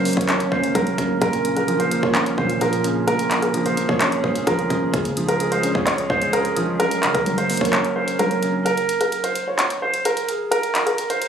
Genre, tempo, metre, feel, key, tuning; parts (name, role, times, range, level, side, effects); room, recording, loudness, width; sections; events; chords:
hip hop, trap; 129 BPM; 4/4; half-time; A4 = 440 Hz
dark grand piano; melody; 0.0-11.3 s; Ab4 to Db5; -22 LUFS; right 1 dB; low-pass filter, tape echo
felt-muted upright piano; accompaniment; 0.0-8.7 s; Gb2 to Db5; -23 LUFS; equal; low-pass filter
warbly tape-like pad; sustained chords; 0.0-8.6 s; F3 to Bb4; -26 LUFS; right 2 dB; chorus, built-in reverb
warm 808-style bass; bass; 0.0-7.7 s; Gb1 to Bb2; -32 LUFS; equal
trap drum kit; drums; 0.1-11.3 s; handclaps, hi-hat, kick drum; -23 LUFS; equal
light reverb; recorded on a phone in the room, club reverb, compression; -18 LUFS; side -7 dB against mid
0.0-8.7 A section; 8.7-11.3 B section
kick muted 7.7-8.7, 8.7-11.3
0.0 Gb; 1.2 Bbm; 4.9 Db; 6.8 Gb; 8.7 N.C.